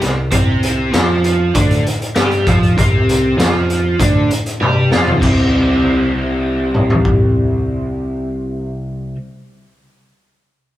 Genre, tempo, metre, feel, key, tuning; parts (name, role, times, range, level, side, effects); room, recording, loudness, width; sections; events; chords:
psychedelic rock; 98 BPM; 4/4; straight; C major; A4 = 440 Hz
overdriven electric guitar; riff; 0.0-9.2 s; C3 to G4; -16 LUFS; equal; rotary speaker
picked electric bass; bass; 0.0-9.1 s; C2 to G2; -22 LUFS; equal
raw garage drum kit; drums; 0.0-7.2 s; crash cymbal, hi-hat, kick drum, snare drum, toms; -16 LUFS; equal
moderate large studio reverb, RT60 1.5 s; band playing live in one room; -12 LUFS; side -14 dB against mid
0.0-5.2 A section; 5.2-7.7 B section
drum fill 4.6-5.2
0.0 C5; 5.2 C